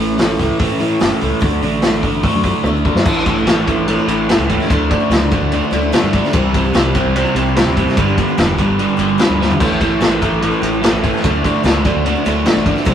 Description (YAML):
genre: classic rock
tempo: 147 BPM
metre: 4/4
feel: straight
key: unclear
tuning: A4 = 440 Hz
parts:
  - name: picked steel-string acoustic guitar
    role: accompaniment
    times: 0.0-12.9 s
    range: G2 to A4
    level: -25 LUFS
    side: left 1 dB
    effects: none
  - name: overdriven electric guitar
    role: riff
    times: 0.0-12.9 s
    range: G2 to D4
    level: -20 LUFS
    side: left 3 dB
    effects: phaser
  - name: overdriven electric guitar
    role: riff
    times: 0.0-12.9 s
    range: G2 to D4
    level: -19 LUFS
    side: right 5 dB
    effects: none
  - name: fingered electric bass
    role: bass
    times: 0.0-12.9 s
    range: E1 to A2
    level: -22 LUFS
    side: left 1 dB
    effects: none
  - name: vintage drum kit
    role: drums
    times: 0.2-12.9 s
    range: crash cymbal, hi-hat, kick drum, ride cymbal, snare drum, toms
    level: -17 LUFS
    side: equal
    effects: none
  - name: crunchy overdriven guitar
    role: riff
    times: 3.1-12.9 s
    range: G2 to D4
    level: -24 LUFS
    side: left 1 dB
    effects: none
room: moderate small room reverb, RT60 0.5 s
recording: rough rehearsal-room recording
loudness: -12 LUFS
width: side -9 dB against mid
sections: 0.0-3.1 A section; 3.1-12.9 B section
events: drum fill 2.6-3.1, 9.4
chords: 0.0 A; 1.4 Dadd9; 3.1 Asus4; 4.7 Dadd9; 6.3 C; 8.0 G; 9.6 Asus4; 11.2 Dadd9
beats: 0.19 0.60 1.01 | 1.42 1.83 2.24 2.65 | 3.06 3.47 3.88 4.29 | 4.70 5.11 5.52 5.93 | 6.34 6.75 7.16 7.57 | 7.97 8.38 8.79 9.20 | 9.61 10.02 10.42 10.83 | 11.24 11.64 12.05 12.46 | 12.87